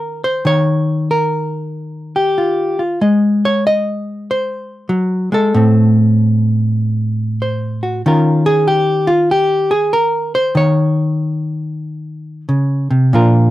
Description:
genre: solo jazz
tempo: 95 BPM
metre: 4/4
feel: swing 67% on 8ths, rubato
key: Eb mixolydian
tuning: A4 = 438 Hz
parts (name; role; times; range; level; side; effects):
- hollow-body jazz guitar; solo; 0.0-13.5 s; A2 to Eb5; -13 LUFS; equal; none
room: light reverb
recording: dark, warm production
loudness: -13 LUFS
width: side -15 dB against mid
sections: 0.0-13.5 A section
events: hollow-body jazz guitar solo 0.0-13.5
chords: 0.0 Eb9; 3.0 Ab7; 5.5 Am; 8.0 Eb5

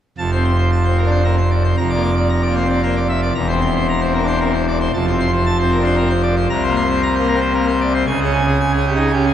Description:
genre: classical, organ toccata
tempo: 114 BPM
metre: 3/4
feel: straight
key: unclear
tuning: A4 = 440 Hz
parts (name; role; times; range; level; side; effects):
- pipe organ, full organ; solo; 0.2-9.3 s; E1 to D6; -14 LUFS; equal; none
room: wet church reverb, RT60 3.4 s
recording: dark, warm production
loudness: -14 LUFS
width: side -10 dB against mid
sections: 0.2-9.3 A section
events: none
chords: 0.2 F; 1.8 Bbadd9/F; 3.4 C7/E; 4.9 F; 6.5 Bbadd9/C; 8.1 Db5

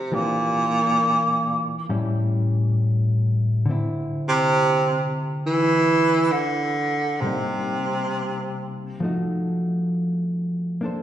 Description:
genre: jazz ballad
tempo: 67 BPM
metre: 4/4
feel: swing 67% on 8ths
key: F major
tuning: A4 = 440 Hz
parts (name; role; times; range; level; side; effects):
- warm baritone saxophone; melody; 0.0-9.0 s; Bb2 to E3; -20 LUFS; right 1 dB; none
- hollow-body jazz guitar; accompaniment; 0.0-11.0 s; A2 to C5; -24 LUFS; left 1 dB; none
room: wet recital hall reverb, RT60 1.7 s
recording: recorded in a church or concert hall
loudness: -20 LUFS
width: side -11 dB against mid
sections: 0.0-11.0 A section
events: none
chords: 0.1 Em7b5; 1.9 A7; 3.7 Dsus2; 7.2 Cm7; 9.0 F7b9

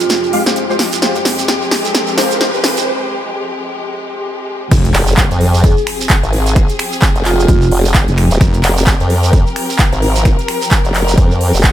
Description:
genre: bass house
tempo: 130 BPM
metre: 4/4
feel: swing 58% on 16ths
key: F minor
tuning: A4 = 445 Hz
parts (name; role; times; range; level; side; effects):
- vibraphone with soft mallets; melody; 0.0-0.3, 5.6-7.7 s; F4 to Ab4; -20 LUFS; right 4 dB; ping-pong delay
- warm symphonic string section; sustained chords; 0.0-11.7 s; F2 to Bb4; -20 LUFS; left 2 dB; sidechain pumping
- big-room dance drum kit; drums; 0.0-11.7 s; crash cymbal, finger snaps, handclaps, hi-hat, snare drum; -17 LUFS; right 1 dB; none
- shekere; percussion; 0.0-11.7 s; none; -24 LUFS; right 7 dB; none
- riser and impact; sound effects; 0.0-6.6 s; none; -23 LUFS; right 1 dB; none
- percussive organ stab; stabs; 0.3-2.5 s; Ab3 to F5; -19 LUFS; left 2 dB; ensemble chorus, sidechain pumping, ping-pong delay
- wobble bass; bass; 4.7-8.6 s; F1; -13 LUFS; equal; chorus, tube saturation, sidechain pumping
- electronic kick drum; drums; 4.7-11.7 s; none; -11 LUFS; equal; none
- formant-sweep wobble bass; bass; 4.9-11.7 s; Eb1 to F2; -13 LUFS; equal; chorus, tube saturation, sidechain pumping
room: light reverb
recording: high-pass filter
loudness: -11 LUFS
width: side -12 dB against mid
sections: 0.0-4.7 A section; 4.7-11.7 B section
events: build-up 0.0-4.7; drum fill 0.0-2.9; riser 0.0-2.9; filter sweep 0.0-4.7; break 2.9-4.7; drop 4.7-11.7; impact 4.7-6.6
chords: 0.0 Fmadd9

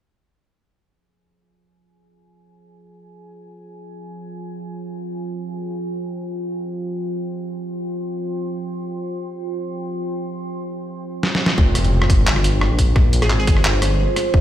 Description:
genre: half-time drum and bass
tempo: free time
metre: none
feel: none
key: F minor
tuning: A4 = 444 Hz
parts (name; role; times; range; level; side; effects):
- deep dark ambient pad; sustained chords; 3.1-14.4 s; F4 to C6; -26 LUFS; right 1 dB; chorus, built-in reverb, sidechain pumping
- boom bap sampler-style drum kit; drums; 11.2-14.2 s; handclaps, hi-hat, rim click, snare drum; -21 LUFS; equal; small room ambience
- dark detuned saw bass; bass; 11.6-14.4 s; F1 to Bb1; -18 LUFS; equal; none
- electronic kick drum; drums; 11.6-14.4 s; none; -15 LUFS; equal; overdrive, small room ambience
- impact; sound effects; 11.6-13.0 s; none; -25 LUFS; equal; none
- glassy wavetable pluck; melody; 13.2-13.5 s; Ab4; -27 LUFS; equal; chorus, ping-pong delay
room: light reverb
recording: played on a big sound system in a bare room, stone room reverb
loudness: -19 LUFS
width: side -11 dB against mid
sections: 0.5-11.6 A section; 11.6-14.4 B section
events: drum fill 11.2-11.6; drop 11.6-14.4; impact 11.6-13.0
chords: 0.5 Fm

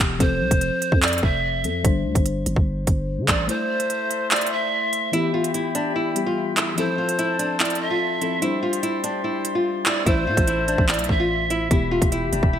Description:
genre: hip hop, drill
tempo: 146 BPM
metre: 4/4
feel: half-time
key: A minor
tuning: A4 = 442 Hz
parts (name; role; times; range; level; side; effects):
- muted felt-like synth keys; accompaniment; 0.0-12.6 s; E3 to E5; -28 LUFS; left 4 dB; chorus, low-pass filter
- growling 808-style bass; bass; 0.0-3.5, 10.1-12.6 s; E1 to D3; -25 LUFS; equal; none
- drill drum kit; drums; 0.0-12.5 s; handclaps, hi-hat, kick drum; -21 LUFS; right 1 dB; gated reverb
- breathy bright pan flute; second line; 0.2-11.7 s; C5 to E5; -25 LUFS; right 2 dB; digital delay
- mellow flute section; sustained chords; 3.5-12.6 s; G4 to C6; -29 LUFS; left 5 dB; none
- nylon-string guitar; melody; 5.1-12.6 s; D4 to F4; -25 LUFS; equal; low-pass filter
room: moderate plate reverb, RT60 1.7 s, studio ambience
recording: bright 1980s-style digital production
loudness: -19 LUFS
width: side -10 dB against mid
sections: 0.0-12.6 A section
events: break 0.0-5.1; kick muted 3.5-10.1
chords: 0.2 F; 1.8 Gsus4; 3.5 Am; 5.1 Em; 6.8 F; 8.4 Gsus4; 10.1 Am; 11.7 Em

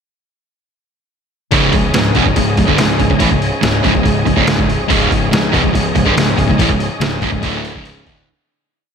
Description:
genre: hard rock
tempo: 142 BPM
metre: 4/4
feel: straight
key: unclear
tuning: A4 = 440 Hz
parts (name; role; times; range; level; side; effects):
- overdriven tonewheel organ; sustained chords; 1.5-8.2 s; C#4 to D#5; -22 LUFS; equal; slow rotary speaker, chorus vibrato
- cranked stack guitar; riff; 1.5-8.3 s; C#2 to E3; -17 LUFS; right 10 dB; overdrive
- sludgy distorted guitar; riff; 1.5-8.3 s; C#2 to E3; -18 LUFS; left 10 dB; overdrive
- fuzz picked electric bass; bass; 1.5-8.3 s; C#1 to A1; -20 LUFS; equal; overdrive
- trip hop sampler-style drum kit; drums; 1.5-8.2 s; hi-hat, kick drum, snare drum; -17 LUFS; equal; overdrive
room: moderate lush hall reverb, RT60 2.3 s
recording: big arena sound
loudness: -11 LUFS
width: side -6 dB against mid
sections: 1.5-8.3 riff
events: fade-out 6.6-8.3; break 7.4-8.3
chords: 1.5 C#m

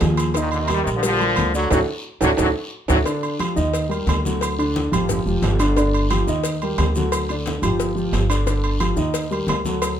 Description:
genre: latin, salsa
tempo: 178 BPM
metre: 4/4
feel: straight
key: G minor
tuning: A4 = 440 Hz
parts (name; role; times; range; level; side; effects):
- dark concert grand piano; accompaniment; 0.0-9.9 s; D3 to Eb5; -22 LUFS; equal; none
- upright bass; bass; 0.0-10.0 s; F1 to Eb2; -23 LUFS; equal; none
- congas; percussion; 0.0-10.0 s; none; -29 LUFS; left 1 dB; none
- cowbell; percussion; 0.0-10.0 s; none; -30 LUFS; left 7 dB; none
- guiro; percussion; 0.0-10.0 s; none; -36 LUFS; left 2 dB; none
- maracas; percussion; 0.0-10.0 s; none; -35 LUFS; left 5 dB; none
- timbales and agogo bells; percussion; 0.0-10.0 s; none; -27 LUFS; right 4 dB; none
- bright trombone section; melody; 0.4-3.0 s; Bb2 to G3; -21 LUFS; left 1 dB; none
room: moderate studio reverb, RT60 0.7 s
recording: none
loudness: -18 LUFS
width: side -9 dB against mid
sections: 0.0-3.1 A section; 3.1-10.0 B section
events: band accent 1.7-3.1; drum fill 2.1-3.1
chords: 0.4 Ebmaj9; 1.7 D7; 3.1 G5; 3.7 Eb; 4.4 D; 5.1 G5; 6.4 Eb; 7.1 D; 7.8 G5; 9.1 Eb

